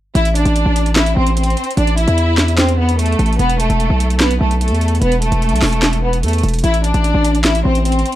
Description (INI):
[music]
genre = hip hop, trap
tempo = 148 BPM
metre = 4/4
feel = half-time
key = A minor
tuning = A4 = 440 Hz
[part]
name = warm studio violin section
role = melody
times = 0.2-8.2 s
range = A3 to E5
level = -18 LUFS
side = left 1 dB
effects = none
[part]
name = distorted 808-style bass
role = bass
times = 0.2-8.0 s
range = E1 to E2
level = -15 LUFS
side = equal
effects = distortion
[part]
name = trap drum kit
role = drums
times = 0.2-8.2 s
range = handclaps, hi-hat, snare drum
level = -20 LUFS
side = equal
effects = none
[sound]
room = digital ambience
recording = dark, warm production, faint mains hum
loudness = -12 LUFS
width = side -14 dB against mid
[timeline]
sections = 0.2-8.2 A section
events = none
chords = 0.2 Am; 3.4 Esus4; 6.6 Am